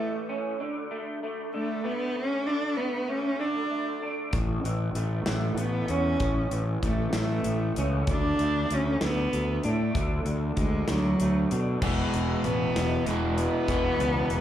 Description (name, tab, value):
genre	quiet-loud alternative rock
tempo	64 BPM (dotted quarters)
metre	6/8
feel	straight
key	unclear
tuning	A4 = 443 Hz
part	rich cello	melody	0.0-14.4 s	F#3 to D4	-29 LUFS	equal	slapback echo
part	electric guitar through a small old amp	arpeggios	0.0-14.4 s	E2 to D4	-34 LUFS	right 1 dB	ensemble chorus
part	fuzz fingered electric bass	bass	4.3-14.4 s	E1 to B2	-28 LUFS	equal	overdrive
part	big rock drum kit	drums	4.3-14.4 s	crash cymbal, hi-hat, kick drum, snare drum	-32 LUFS	equal	none
part	overdriven electric guitar	riff	11.8-14.4 s	E2 to E3	-28 LUFS	left 1 dB	none
room	little or no reverb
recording	live gig heard through the venue's PA, club reverb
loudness	-25 LUFS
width	side -11 dB against mid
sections	0.0-11.8 A section; 11.8-14.4 B section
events	cello solo 11.8-14.4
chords	0.0 A; 0.6 D5; 4.3 A; 8.1 D5; 11.8 E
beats	| 0.59 1.52 | 2.46 3.40 | 4.34 5.28 | 6.21 7.15 | 8.09 9.02 | 9.96 10.89 | 11.82 12.76 | 13.69